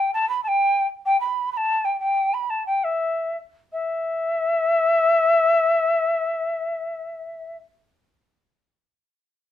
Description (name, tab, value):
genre	andean folk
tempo	78-98 BPM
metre	2/4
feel	straight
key	E minor pentatonic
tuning	A4 = 441 Hz
part	mellow quena	solo	0.0-7.6 s	E5 to B5	-20 LUFS	left 1 dB	none
room	light reverb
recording	minimal, uncompressed stereo recording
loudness	-19 LUFS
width	side -11 dB against mid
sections	0.0-3.7 A section; 3.7-6.8 B section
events	slowing down 1.1-3.7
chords	none